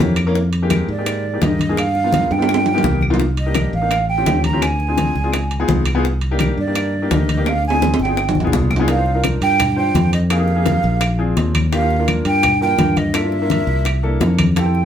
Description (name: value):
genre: Afro-Cuban jazz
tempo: 169 BPM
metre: 4/4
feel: straight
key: C minor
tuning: A4 = 440 Hz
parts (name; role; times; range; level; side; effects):
- breathy mellow jazz flute; melody; 0.0-14.8 s; Db5 to Bb5; -21 LUFS; right 4 dB; none
- warm baby grand piano; accompaniment; 0.0-14.8 s; Ab3 to C5; -23 LUFS; left 2 dB; none
- modern bright fingered electric bass; bass; 0.0-14.8 s; G1 to Ab2; -19 LUFS; equal; none
- bongos; percussion; 0.0-14.8 s; none; -24 LUFS; left 4 dB; none
- congas; percussion; 0.0-14.8 s; none; -23 LUFS; left 1 dB; none
- claves; percussion; 0.2-14.6 s; none; -28 LUFS; left 2 dB; none
- timbales; percussion; 0.2-14.7 s; none; -24 LUFS; right 4 dB; none
room: wet studio reverb, RT60 0.6 s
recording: band playing live in one room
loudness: -15 LUFS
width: side -9 dB against mid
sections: 0.0-8.9 A section; 8.9-14.8 B section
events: drum fill 2.3-3.2, 7.5-8.9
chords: 0.4 Fm11; 1.8 G7alt; 3.2 Cm9; 3.9 A7alt; 4.6 Dm7b5; 5.3 Db9; 6.0 Cm9; 7.5 Dm7b5; 8.2 G7b9; 8.9 Cm11; 10.3 Fm11; 11.0 Bb7; 11.7 Ebmaj7; 13.1 Gm9; 13.9 C13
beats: 0.00 | 0.36 0.71 1.07 1.42 | 1.78 2.14 2.49 2.85 | 3.20 3.56 3.91 4.27 | 4.62 4.98 5.33 5.69 | 6.04 6.40 6.75 7.11 | 7.46 7.82 8.17 8.53 | 8.88 9.24 9.59 9.95 | 10.30 10.66 11.01 11.37 | 11.72 12.08 12.44 12.79 | 13.14 13.50 13.86 14.21 | 14.57